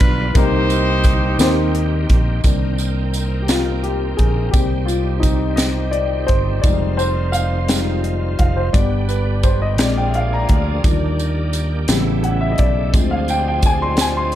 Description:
slow gospel; 57 BPM (dotted quarters); 6/8; straight; C minor; A4 = 440 Hz
warm horn section; melody; 0.0-2.1 s; D4 to C5; -20 LUFS; right 1 dB
warm baby grand piano; accompaniment; 0.0-14.4 s; G2 to C6; -21 LUFS; left 3 dB
bright tonewheel organ; sustained chords; 0.0-14.4 s; C#3 to G5; -28 LUFS; right 3 dB; slow rotary speaker, chorus vibrato
fingered electric bass; bass; 0.0-14.4 s; F1 to Eb2; -20 LUFS; equal
crisp fusion drum kit; drums; 0.0-14.4 s; hi-hat, kick drum, snare drum; -18 LUFS; equal
tambourine; percussion; 0.3-14.3 s; -30 LUFS; right 8 dB
muted French horn section; sustained chords; 2.4-14.4 s; Eb3 to E5; -32 LUFS; right 2 dB
light reverb; -15 LUFS; side -12 dB against mid
0.0-2.4 A section; 2.4-14.4 B section
grand piano solo 2.4-14.4
0.3 Cm7; 4.5 Ebmaj13; 6.6 Fm7; 8.7 G; 9.8 Bb7; 10.8 Ebmaj7; 11.9 A7; 12.9 Dm7b5

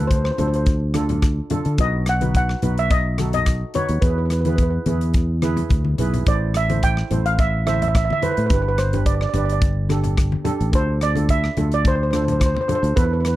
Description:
calypso; 107 BPM; 4/4; swing 53% on 16ths; A4 = 440 Hz
steel pan; accompaniment; 0.0-13.2 s; B3 to C5; -28 LUFS; right 4 dB
fingered electric bass; bass; 0.0-13.4 s; G1 to D3; -21 LUFS; equal
steel pan; melody; 0.1-13.4 s; B4 to G5; -23 LUFS; right 1 dB
modern studio drum kit; drums; 0.1-13.4 s; hi-hat, kick drum, rim click; -21 LUFS; equal
congas; percussion; 0.4-12.8 s; -27 LUFS; left 4 dB
little or no reverb; dry, close 1970s-style studio recording; -17 LUFS; side -15 dB against mid
0.0-13.4 A section
drum fill 5.7-6.3
0.0 Dm; 1.8 B7; 4.0 E; 6.3 Am; 8.5 Gadd9; 10.7 Dm

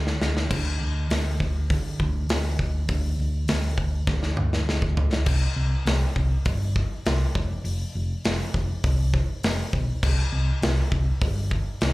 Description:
hard rock; 101 BPM; 4/4; straight; A4 = 440 Hz
hollow-body short-scale fingered electric bass; bass; 0.0-11.9 s; F1 to D3; -24 LUFS; equal
big rock drum kit; drums; 0.1-11.9 s; crash cymbal, hi-hat, kick drum, snare drum, toms; -26 LUFS; equal
little or no reverb; live gig heard through the venue's PA, club ambience; -22 LUFS; side -20 dB against mid
0.5-5.3 A section; 5.3-11.9 B section
drum fill 0.0-0.5, 4.1-5.3

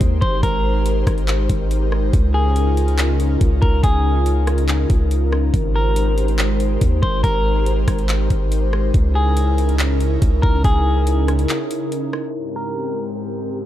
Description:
hip hop, atmospheric cloud-rap; 141 BPM; 4/4; half-time; Ab major; A4 = 440 Hz
clean electric guitar; melody; 0.0-13.7 s; Ab4 to C5; -25 LUFS; left 1 dB; low-pass filter, digital delay
airy breathy pad; sustained chords; 0.0-13.7 s; Ab2 to C5; -23 LUFS; left 1 dB; chorus, sidechain pumping
long sustained 808-style bass; bass; 0.0-11.5 s; Ab1 to Eb2; -18 LUFS; equal
smooth R&B drum kit; drums; 0.0-12.2 s; handclaps, hi-hat, kick drum, rim click; -20 LUFS; equal
digital ambience; dark, warm production, low-pass filter; -16 LUFS; side -13 dB against mid
0.0-12.3 A section; 12.3-13.7 B section
break 11.5-12.3
0.0 Abmaj9; 2.1 Db69; 5.5 Abmaj9; 8.9 Dbm6; 12.3 Abmaj9

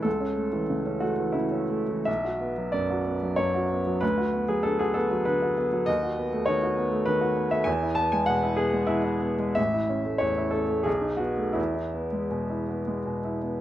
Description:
classical, romantic character piece for solo piano; 78-102 BPM; 3/4; rubato; E major from 5.9 s; A4 = 435 Hz
clear baby grand piano; solo; 0.0-13.6 s; A1 to A5; -24 LUFS; equal
moderate large studio reverb, RT60 0.8 s; -24 LUFS; side -13 dB against mid
0.0-13.6 A section
0.1 A/C#; 2.1 Bm; 4.0 Bm/D; 5.9 B7/D#; 7.7 E; 9.6 A; 10.9 B7; 11.6 E

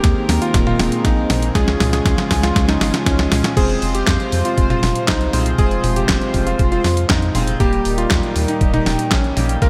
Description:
italo disco; 119 BPM; 4/4; straight; F minor; A4 = 440 Hz
bright electric grand piano; melody; 0.0-9.7 s; Db4 to Bb4; -25 LUFS; equal; digital delay
warm studio string section; sustained chords; 0.0-9.7 s; Bb2 to C5; -28 LUFS; equal
chorused polysynth; stabs; 0.0-9.7 s; G3 to C5; -25 LUFS; equal
round analog bass; bass; 0.0-9.7 s; Eb1 to F2; -23 LUFS; equal
detuned 8-bit digital drum machine; drums; 0.0-9.7 s; crash cymbal, handclaps, hi-hat, snare drum, toms; -23 LUFS; equal; gated reverb
electronic kick drum; drums; 0.0-9.7 s; -21 LUFS; equal
light reverb; -17 LUFS; mono
0.0-3.6 A section; 3.6-9.7 B section
drum fill 0.0-3.6; filter sweep on analog polysynth 0.0-3.6
0.0 Abadd9/Eb; 1.6 Db; 3.6 Fm; 7.6 Eb

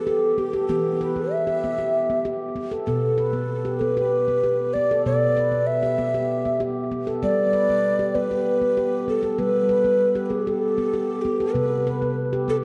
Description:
world meditative; 193 BPM (eighths); 7/8; straight; E minor; A4 = 439 Hz
breathy mellow Native American-style cedar flute; melody; 0.0-12.6 s; G4 to E5; -24 LUFS; equal
handpan; arpeggios; 0.0-12.6 s; B2 to B4; -27 LUFS; equal; analog delay
wet plate reverb, RT60 2.5 s; dark, warm production, nothing above 10.9 kHz; -23 LUFS; mono
0.0-12.6 A section
0.0 Em; 2.9 Bm; 7.2 G; 11.6 C5

